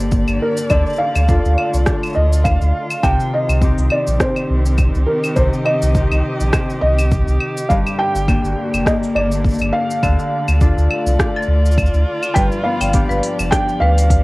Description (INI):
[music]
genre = folktronica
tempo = 103 BPM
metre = 4/4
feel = swing 56% on 16ths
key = C dorian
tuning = A4 = 439 Hz
[part]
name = felt-muted upright piano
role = melody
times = 0.0-14.2 s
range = Bb4 to G5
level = -21 LUFS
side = right 1 dB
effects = cassette tape, tape echo, plate reverb
[part]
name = warm string quartet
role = sustained chords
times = 0.0-14.2 s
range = D3 to Eb5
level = -25 LUFS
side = equal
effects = cassette tape, plate reverb
[part]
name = Celtic harp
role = arpeggios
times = 0.0-14.2 s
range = G2 to A4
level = -23 LUFS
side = left 2 dB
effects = cassette tape, plate reverb
[part]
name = warm sub bass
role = bass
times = 0.0-14.2 s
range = F1 to D2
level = -16 LUFS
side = equal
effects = tube saturation
[part]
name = electronic kick drum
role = drums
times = 0.1-14.2 s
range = none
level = -18 LUFS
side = equal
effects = cassette tape
[part]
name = organic electronic drum kit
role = drums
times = 0.1-14.2 s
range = claves, hi-hat, rim click, shaker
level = -23 LUFS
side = equal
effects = cassette tape
[part]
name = marimba with hard mallets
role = second line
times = 12.4-14.0 s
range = B4 to G5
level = -26 LUFS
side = left 2 dB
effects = cassette tape, analog delay, plate reverb
[sound]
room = light reverb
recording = home recording on cassette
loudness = -14 LUFS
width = side -22 dB against mid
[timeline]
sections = 0.0-12.4 A section; 12.4-14.2 B section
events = none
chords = 0.0 Gm; 0.7 Dm; 3.0 Cm; 7.7 Gm; 10.0 Dm; 12.4 G7